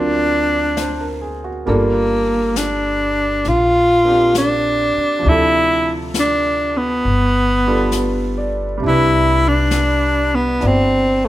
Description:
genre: jazz ballad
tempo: 67 BPM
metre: 4/4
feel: swing 68% on 8ths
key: G minor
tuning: A4 = 440 Hz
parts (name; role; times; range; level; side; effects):
- breathy tenor saxophone; melody; 0.0-11.3 s; A3 to F4; -15 LUFS; equal; none
- clear baby grand piano; accompaniment; 0.0-11.3 s; C3 to D5; -23 LUFS; right 3 dB; none
- upright bass; bass; 0.0-11.3 s; G1 to D2; -21 LUFS; left 1 dB; none
- jazz brush drum kit; drums; 0.8-11.3 s; brushed snare drum, hi-hat, snare drum; -27 LUFS; left 4 dB; none
room: moderate large studio reverb, RT60 1.0 s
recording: minimal, uncompressed stereo recording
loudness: -14 LUFS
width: side -15 dB against mid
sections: 0.0-1.7 A section; 1.7-11.3 B section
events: none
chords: 0.0 D7alt; 1.7 Gm7; 5.2 Dm7; 7.0 G9; 8.8 Cmaj9

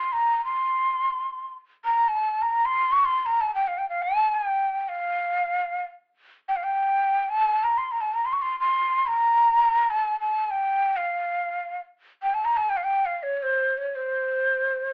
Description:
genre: Turkish makam ensemble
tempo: free time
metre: none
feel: none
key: C makam hicaz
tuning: A4 = 440 Hz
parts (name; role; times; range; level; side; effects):
- breathy bright ney; solo; 0.0-14.9 s; C5 to Db6; -21 LUFS; equal; none
room: moderate studio reverb, RT60 0.5 s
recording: band playing live in one room, AM radio sound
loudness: -21 LUFS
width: side -29 dB against mid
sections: 0.0-14.9 A section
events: none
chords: none

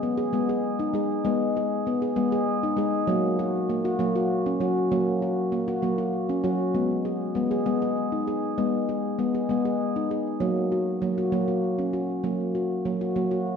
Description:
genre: world meditative, meditative tuned percussion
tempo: 66 BPM (dotted quarters)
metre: 6/8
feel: straight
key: G# minor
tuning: A4 = 437 Hz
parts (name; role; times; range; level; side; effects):
- handpan; solo; 0.0-13.6 s; F#3 to G#4; -23 LUFS; left 1 dB; ping-pong delay
room: wet echo chamber reverb, RT60 1.5 s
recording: worn, warbling old tape, cassette tape, warbly pitch drift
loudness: -23 LUFS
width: side -6 dB against mid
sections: 0.0-6.7 A section; 6.7-13.6 B section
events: none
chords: 0.0 G#m; 3.1 F#; 6.7 G#m; 10.4 F#

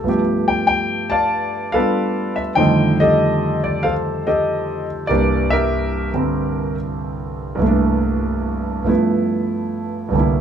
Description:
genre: solo jazz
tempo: 95 BPM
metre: 4/4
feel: swing 69% on 8ths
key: C mixolydian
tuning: A4 = 440 Hz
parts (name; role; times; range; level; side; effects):
- warm concert grand piano; solo; 0.0-10.4 s; C2 to A5; -16 LUFS; equal; none
room: moderate studio reverb, RT60 0.6 s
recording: none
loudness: -16 LUFS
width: side -8 dB against mid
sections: 0.0-10.1 A section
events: none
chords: 0.1 G9; 2.6 F13; 5.1 C13; 8.9 G13

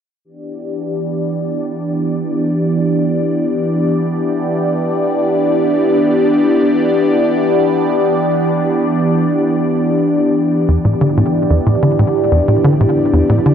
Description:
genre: ambient, sequencer-driven space music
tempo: free time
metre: none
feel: none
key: E minor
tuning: A4 = 440 Hz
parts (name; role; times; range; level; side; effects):
- phased analog pad; sustained chords; 0.2-13.5 s; E3 to D5; -13 LUFS; equal; phaser, chorus
- tight sequencer bass; riff; 10.7-13.5 s; E2 to D3; -13 LUFS; equal; analog chorus, tape echo
room: wet huge ambient reverb, RT60 7.9 s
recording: dark, warm production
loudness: -12 LUFS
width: side -8 dB against mid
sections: 0.2-10.7 A section; 10.7-13.5 B section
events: none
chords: 0.2 Em7

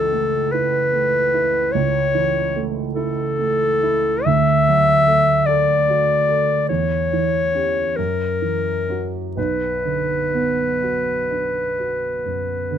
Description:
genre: classical, romantic duo for clarinet and grand piano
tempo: 41-50 BPM (dotted quarters)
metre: 12/8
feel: rubato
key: B minor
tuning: A4 = 440 Hz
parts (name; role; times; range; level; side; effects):
- clear clarinet; melody; 0.0-12.8 s; A4 to E5; -18 LUFS; left 2 dB; none
- dark baby grand piano; accompaniment; 0.0-12.8 s; B1 to A4; -22 LUFS; right 5 dB; none
room: light reverb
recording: dark, warm production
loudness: -17 LUFS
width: side -9 dB against mid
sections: 0.0-12.8 A section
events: none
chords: 0.0 A/C#; 4.3 D; 6.7 C#dim/E; 8.0 F#7; 9.4 Bm

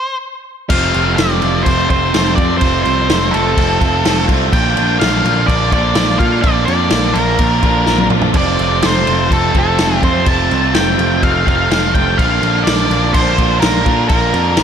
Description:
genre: classic rock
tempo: 125 BPM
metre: 4/4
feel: straight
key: F major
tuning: A4 = 441 Hz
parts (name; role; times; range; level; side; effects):
- octave-fuzz lead guitar; melody; 0.0-14.6 s; A4 to A5; -17 LUFS; equal; distortion, slapback echo
- bright tonewheel organ; sustained chords; 0.7-14.6 s; C4 to D5; -28 LUFS; equal; none
- distorted electric guitar; riff; 0.7-14.6 s; F2 to F4; -19 LUFS; right 11 dB; distortion, slapback echo
- tight distorted guitar; riff; 0.7-14.6 s; F2 to F4; -20 LUFS; left 12 dB; distortion, slapback echo
- modern bright picked electric bass; bass; 0.7-14.6 s; F1 to Bb2; -18 LUFS; equal; none
- vintage drum kit; drums; 0.7-14.6 s; crash cymbal, kick drum, snare drum, toms; -16 LUFS; equal; none
room: moderate lush hall reverb, RT60 1.6 s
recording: big arena sound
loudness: -11 LUFS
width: side -8 dB against mid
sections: 0.7-14.6 A section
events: stop 0.0-0.7; drum fill 7.9-8.4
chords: 0.0 C5; 0.7 F; 4.5 Bb; 8.4 F; 12.2 Bb

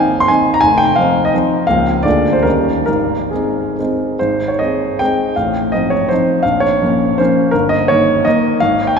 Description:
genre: classical, romantic triple-time dance for piano with dotted rhythms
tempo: 126-185 BPM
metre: 3/4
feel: rubato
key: Ab major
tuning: A4 = 441 Hz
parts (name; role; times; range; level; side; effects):
- warm grand piano; solo; 0.0-9.0 s; F1 to C6; -12 LUFS; equal; none
room: wet cathedral reverb, RT60 4.9 s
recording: recorded in a church or concert hall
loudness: -12 LUFS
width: side -6 dB against mid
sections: 0.0-4.2 A section; 4.2-9.0 A section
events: none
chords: 0.0 Ab; 0.6 F5; 1.7 Bbm/Db; 2.1 Bb7/D; 2.5 Eb7; 2.9 Ab; 5.4 F7/A; 6.5 Bbm; 7.5 Eb7/G

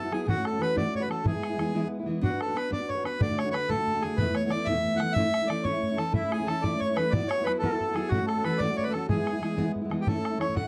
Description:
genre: celtic folk, Celtic jig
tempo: 122 BPM (dotted quarters)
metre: 6/8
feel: straight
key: E mixolydian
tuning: A4 = 440 Hz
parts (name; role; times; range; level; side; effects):
- accordion; melody; 0.0-10.7 s; E4 to F#5; -32 LUFS; equal; none
- bright reedy baroque flute; second line; 0.0-1.9, 6.1-10.7 s; E4 to F#5; -37 LUFS; equal; none
- fingerpicked steel-string acoustic guitar; accompaniment; 0.0-10.7 s; D2 to B4; -32 LUFS; equal; none
- bodhran; percussion; 0.1-10.7 s; none; -33 LUFS; equal; none
room: wet studio ambience, RT60 0.5 s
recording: dark, warm production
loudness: -28 LUFS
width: mono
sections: 0.0-2.2 A section; 2.2-10.1 A section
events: break 1.7-2.2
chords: 0.3 A6; 1.3 E; 2.2 Bm; 3.2 D; 4.2 Esus4; 5.2 A; 7.1 Esus2; 8.1 A6; 9.1 E; 10.1 A

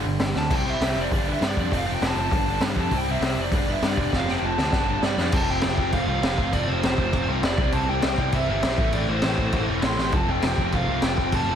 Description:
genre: punk rock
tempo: 200 BPM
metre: 4/4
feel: straight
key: unclear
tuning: A4 = 440 Hz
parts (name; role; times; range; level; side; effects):
- distorted electric guitar; riff; 0.0-11.6 s; F2 to F4; -31 LUFS; right 14 dB; overdrive
- distorted electric guitar; riff; 0.0-11.6 s; F2 to C4; -32 LUFS; right 1 dB; overdrive
- raw garage guitar; riff; 0.0-11.6 s; F2 to C4; -30 LUFS; left 16 dB; overdrive
- growling picked electric bass; bass; 0.0-11.6 s; E1 to G2; -28 LUFS; equal; overdrive
- raw garage drum kit; drums; 0.2-11.4 s; crash cymbal, hi-hat, kick drum, snare drum; -25 LUFS; equal; none
- biting lead guitar; melody; 0.4-11.6 s; C5 to C6; -28 LUFS; right 2 dB; overdrive
room: little or no reverb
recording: none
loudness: -21 LUFS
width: side -8 dB against mid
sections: 0.5-5.3 A section; 5.3-11.6 B section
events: drum fill 0.4, 4.1-5.3, 10.0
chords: 0.0 G5; 0.5 C; 1.1 G; 1.7 F; 2.3 G; 2.9 C; 3.5 G; 4.1 F; 4.7 G; 5.3 F; 7.6 C; 8.8 Am; 10.1 F

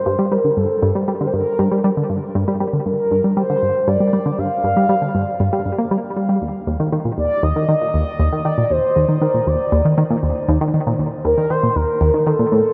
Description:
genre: ambient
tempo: 118 BPM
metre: 4/4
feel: straight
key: unclear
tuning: A4 = 440 Hz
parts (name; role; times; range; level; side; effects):
- mellow horn-like synth lead; melody; 0.0-12.7 s; G4 to F5; -22 LUFS; equal; chorus, phaser, tape echo
- tight sequenced synth; riff; 0.1-12.6 s; Eb2 to Bb3; -20 LUFS; equal; chorus, tape echo
room: wet huge ambient reverb, RT60 7.7 s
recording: none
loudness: -18 LUFS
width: mono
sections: 0.0-12.7 A section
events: none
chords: 0.0 Gm7; 6.4 Eb5

